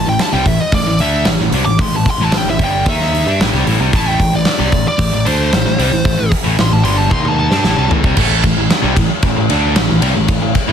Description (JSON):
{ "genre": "hard rock", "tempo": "113 BPM", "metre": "4/4", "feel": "straight", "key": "A minor", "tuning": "A4 = 439 Hz", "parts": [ { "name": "smooth overdriven lead guitar", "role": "melody", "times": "0.0-7.9 s", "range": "C5 to D6", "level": "-19 LUFS", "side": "equal", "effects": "slapback echo" }, { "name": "sludgy distorted guitar", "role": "riff", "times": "0.0-10.7 s", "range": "G2 to D#4", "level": "-16 LUFS", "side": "equal", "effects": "overdrive" }, { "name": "picked electric bass", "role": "bass", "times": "0.0-10.7 s", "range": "G1 to G2", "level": "-18 LUFS", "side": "equal", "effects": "none" }, { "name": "big rock drum kit", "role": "drums", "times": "0.2-10.7 s", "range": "crash cymbal, hi-hat, kick drum, ride cymbal, snare drum, toms", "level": "-16 LUFS", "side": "equal", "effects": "soft clipping on kick" } ], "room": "light reverb", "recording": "dense, heavily limited modern master", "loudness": "-11 LUFS", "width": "side -8 dB against mid", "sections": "0.0-8.2 A section; 8.2-10.7 B section", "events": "lead electric guitar solo 0.0-8.2; drum fill 7.1-8.2", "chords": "0.0 Am" }